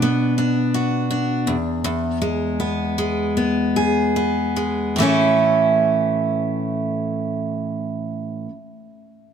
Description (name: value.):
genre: pop.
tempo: 72-84 BPM.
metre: 4/4.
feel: swing 55% on 16ths.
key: A major.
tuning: A4 = 440 Hz.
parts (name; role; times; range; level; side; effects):
picked steel-string acoustic guitar; accompaniment; 0.0-8.5 s; E2 to G#4; -18 LUFS; right 1 dB; none.
room: moderate plate reverb, RT60 3.4 s.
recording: none.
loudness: -18 LUFS.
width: side -8 dB against mid.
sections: 0.0-5.0 A section; 5.0-8.3 B section.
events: slowing down 0.0-5.0.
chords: 0.0 Bm; 1.5 E; 5.0 A.